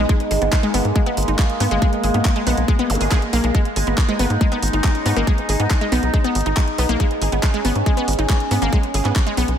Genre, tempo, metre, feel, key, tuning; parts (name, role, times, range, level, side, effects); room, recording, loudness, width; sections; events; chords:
psychedelic trance; 139 BPM; 4/4; straight; G# minor; A4 = 440 Hz
overtone-sweeping drone; sustained chords; 0.0-9.6 s; G#3 to D#4; -23 LUFS; right 1 dB; chorus, built-in reverb, sidechain pumping
wide unison pluck; riff; 0.0-9.4 s; G#3 to G#4; -23 LUFS; left 1 dB; auto-pan, sidechain pumping, analog delay
tight sequencer bass; bass; 0.0-9.6 s; G#1 to G#2; -20 LUFS; equal
electronic kick drum; drums; 0.1-9.2 s; -17 LUFS; equal; overdrive
garage drum kit; drums; 0.1-9.6 s; handclaps, hi-hat; -27 LUFS; right 1 dB; overdrive
zap; sound effects; 2.9-3.0 s; -30 LUFS; equal
vowel-sweep wobble bass; second line; 4.1-6.2 s; B3 to D#4; -35 LUFS; right 2 dB
moderate lush hall reverb, RT60 1.7 s; dreamy mix soaked in reverb; -16 LUFS; side -9 dB against mid
0.0-9.6 A section
0.0 G#5